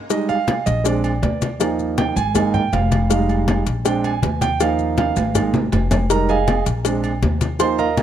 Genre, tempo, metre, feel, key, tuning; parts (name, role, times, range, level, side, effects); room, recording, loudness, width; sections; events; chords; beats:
latin, salsa; 160 BPM; 4/4; straight; A4 = 440 Hz
warm concert grand piano; accompaniment; 0.1-8.0 s; F3 to C6; -20 LUFS; right 5 dB
congas; percussion; 0.1-8.0 s; -22 LUFS; left 3 dB
cowbell; percussion; 0.1-8.0 s; -26 LUFS; left 11 dB
maracas; percussion; 0.1-8.0 s; -32 LUFS; left 21 dB
agogo bells and timbales; percussion; 0.3-8.0 s; -28 LUFS; right 3 dB
upright bass; bass; 0.7-8.0 s; F1 to Eb2; -22 LUFS; left 1 dB
small room ambience; dry, close 1970s-style studio recording; -16 LUFS; side -10 dB against mid
0.1-8.0 A section
grand piano solo 0.1-8.0; drum fill 5.0-6.1
0.1 Fm7; 0.9 Bb7; 1.6 Ebsus2; 2.4 Absus2; 3.9 Bb7; 4.6 Ebsus2; 5.4 Absus2; 6.1 Fm7; 6.9 Bb7
| 0.10 0.48 0.85 1.23 | 1.60 1.98 2.35 2.73 | 3.10 3.48 3.85 4.23 | 4.61 4.98 5.35 5.73 | 6.10 6.48 6.85 7.23 | 7.60 7.98